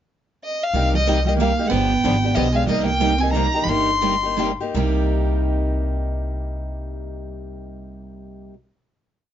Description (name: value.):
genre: acoustic string swing (jazz manouche).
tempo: 158-186 BPM.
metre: 3/4.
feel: swing 60% on 8ths.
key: C minor.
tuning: A4 = 440 Hz.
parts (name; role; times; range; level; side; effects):
rich violin; melody; 0.4-4.4 s; Eb5 to C6; -22 LUFS; left 2 dB; none.
picked steel-string acoustic guitar; accompaniment; 0.7-8.5 s; C3 to G4; -27 LUFS; left 5 dB; none.
picked steel-string acoustic guitar; accompaniment; 0.7-8.5 s; C3 to G4; -27 LUFS; right 7 dB; none.
upright bass; bass; 0.7-8.5 s; G1 to C2; -24 LUFS; equal; none.
picked steel-string acoustic guitar; second line; 0.9-4.4 s; G3 to Eb4; -24 LUFS; right 7 dB; none.
room: light reverb.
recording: nothing above 7.5 kHz.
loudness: -18 LUFS.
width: side -10 dB against mid.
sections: 0.0-0.7 pickup bar; 0.7-4.7 A section; 4.7-7.0 final chord.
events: slowing down 2.7-4.7.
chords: 0.0 N.C.; 0.7 Cm7; 1.7 G7; 2.7 Cm7.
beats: 0.10 0.42 | 0.74 1.07 1.39 | 1.71 2.04 2.36 | 2.68 3.01 3.33 | 3.67 4.01 4.37 | 4.74 5.12 5.50 | 5.88 6.27 6.65.